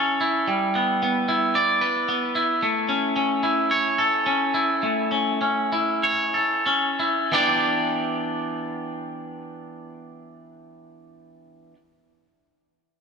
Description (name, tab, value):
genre	rock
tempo	89-111 BPM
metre	4/4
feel	straight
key	E dorian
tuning	A4 = 440 Hz
part	twangy electric guitar	solo	0.0-11.8 s	E3 to D5	-20 LUFS	equal	spring reverb, tape echo
room	moderate concert hall reverb, RT60 2.4 s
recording	none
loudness	-20 LUFS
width	side -5 dB against mid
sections	0.0-7.3 A section; 7.3-12.7 B section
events	slowing down 2.6-7.3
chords	0.5 Em7/G; 2.6 A; 7.3 Em7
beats	| 0.47 1.01 1.55 2.09 | 2.63 3.17 3.72 4.28 | 4.85 5.43 6.04 6.67 | 7.33 8.01 8.68 9.36 | 10.03 10.71 11.38